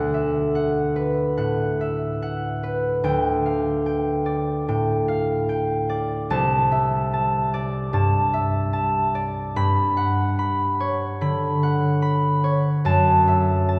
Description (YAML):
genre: classical, solo harp piece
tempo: 73 BPM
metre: 4/4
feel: rubato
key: D major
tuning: A4 = 440 Hz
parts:
  - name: concert harp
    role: solo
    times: 0.0-13.8 s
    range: C2 to B5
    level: -22 LUFS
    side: equal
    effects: none
room: wet cathedral reverb, RT60 4.3 s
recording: none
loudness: -22 LUFS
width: mono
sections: 0.0-13.8 A section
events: none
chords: 0.0 D69; 3.1 Dmadd9; 6.3 C69; 9.6 Gmaj7#11; 12.9 F#m7